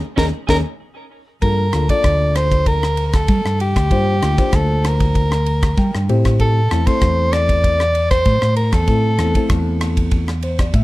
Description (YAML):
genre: electric jazz fusion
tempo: 96 BPM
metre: 4/4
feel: straight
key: unclear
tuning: A4 = 439 Hz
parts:
  - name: breathy soprano saxophone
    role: melody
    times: 0.2-9.7 s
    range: G4 to D5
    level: -19 LUFS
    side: equal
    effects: none
  - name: reed electric piano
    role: accompaniment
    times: 0.2-10.8 s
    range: A3 to G5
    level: -24 LUFS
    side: left 3 dB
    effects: overdrive
  - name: clean electric guitar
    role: stabs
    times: 0.2-0.6 s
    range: Db4 to Ab4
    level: -32 LUFS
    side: right 5 dB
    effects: analog chorus, tape echo
  - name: mellow fretless electric bass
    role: bass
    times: 0.2-10.8 s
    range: D2 to G3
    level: -18 LUFS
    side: equal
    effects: none
  - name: crisp fusion drum kit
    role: drums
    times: 0.2-10.8 s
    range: kick drum, ride cymbal, rim click, snare drum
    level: -20 LUFS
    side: equal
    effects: none
room: light reverb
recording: dark, warm production, lossy compression artefacts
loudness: -14 LUFS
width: side -18 dB against mid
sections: 0.0-1.4 A section; 1.4-10.8 B section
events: band accent 0.0-1.4; reed electric piano fill 0.2-1.4, 5.5-6.4, 10.1-10.8; drum fill 0.8-1.4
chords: 0.0 Eb7sus4; 1.4 Gm7; 6.1 Am